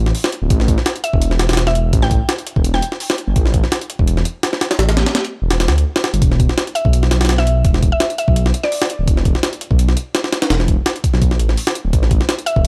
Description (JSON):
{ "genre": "drum and bass, jungle", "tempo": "168 BPM", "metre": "4/4", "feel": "swing 54% on 16ths", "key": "E minor", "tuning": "A4 = 440 Hz", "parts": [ { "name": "dark detuned saw bass", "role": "bass", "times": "0.0-12.7 s", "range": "D1 to D2", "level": "-18 LUFS", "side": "equal", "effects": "none" }, { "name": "jungle sampler-style drum kit", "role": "drums", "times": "0.1-12.7 s", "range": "hi-hat, kick drum, snare drum", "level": "-19 LUFS", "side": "equal", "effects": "studio reverb" }, { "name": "mallet-like synth pluck", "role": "melody", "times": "1.0-3.1, 6.8-9.0, 12.5-12.7 s", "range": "D5 to G5", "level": "-25 LUFS", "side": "equal", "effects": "chorus, dub echo" } ], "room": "little or no reverb", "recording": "dry, gritty hardware recording", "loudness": "-16 LUFS", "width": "mono", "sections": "0.0-12.7 A section", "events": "none", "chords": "0.0 E7sus4 (rootless); 0.5 A7(no3); 6.2 E5; 11.9 A5" }